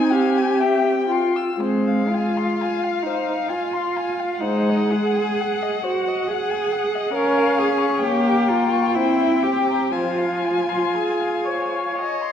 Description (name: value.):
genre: classical, slow romantic movement for string quartet.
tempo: 65 BPM.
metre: 3/4.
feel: uneven beats, rubato.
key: F minor.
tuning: A4 = 443 Hz.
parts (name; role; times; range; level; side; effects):
muted violin; melody; 0.0-12.3 s; Eb5 to Ab5; -27 LUFS; left 12 dB; none.
muted violin; second line; 0.0-12.3 s; C5 to E6; -27 LUFS; left 5 dB; none.
muted viola; accompaniment; 0.0-12.3 s; F3 to Db5; -22 LUFS; left 1 dB; none.
muted cello; bass; 0.0-12.0 s; C4 to Bb4; -23 LUFS; right 4 dB; none.
room: wet recital hall reverb, RT60 1.5 s.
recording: dark, warm production.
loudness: -18 LUFS.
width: side -9 dB against mid.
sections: 0.0-12.3 A section.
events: none.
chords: 0.0 Fm/C; 0.6 C; 1.6 Fm/Ab; 4.4 Ab7(no3); 7.1 Db; 8.0 Gdim/Bb; 9.0 C7; 9.9 Fm.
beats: 0.61 | 1.60 2.58 3.48 | 4.41 5.37 6.27 | 7.14 8.03 8.95 | 9.93 10.94 11.96.